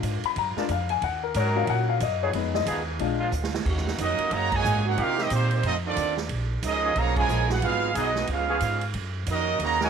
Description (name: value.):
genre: jazz, big band swing.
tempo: 182 BPM.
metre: 4/4.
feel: swing 62% on 8ths.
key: Eb minor.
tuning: A4 = 443 Hz.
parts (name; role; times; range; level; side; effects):
warm baby grand piano; accompaniment; 0.0-3.3 s; Gb3 to Cb6; -27 LUFS; left 13 dB; none.
upright bass; bass; 0.0-9.9 s; Ab1 to C3; -28 LUFS; equal; none.
swinging big-band drum kit; drums; 0.0-9.9 s; crash cymbal, hi-hat, kick drum, ride cymbal, snare drum; -33 LUFS; right 5 dB; none.
warm trombone section; sustained chords; 0.6-9.9 s; Eb3 to Bb4; -32 LUFS; equal; none.
bright trumpet section; melody; 4.0-9.9 s; Bb3 to Bb5; -26 LUFS; right 3 dB; none.
clear trombone section; second line; 4.0-9.9 s; Bb2 to Gb4; -31 LUFS; right 13 dB; none.
room: light reverb, studio reverb.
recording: 1960s-style stereo with parts hard left and right.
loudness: -23 LUFS.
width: side -7 dB against mid.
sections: 0.0-3.7 A section; 3.7-9.9 B section.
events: grand piano solo 0.0-3.7; drum fill 3.3-3.7; band accent 4.5, 7.1.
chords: 0.0 Bb7; 1.0 Ebm7; 2.3 Fm7b5; 3.0 Bb7; 3.7 Ebm7; 5.0 Cm7; 5.6 F7; 6.3 Bbm7; 7.6 Abm7; 8.3 Db7; 8.9 Gb6.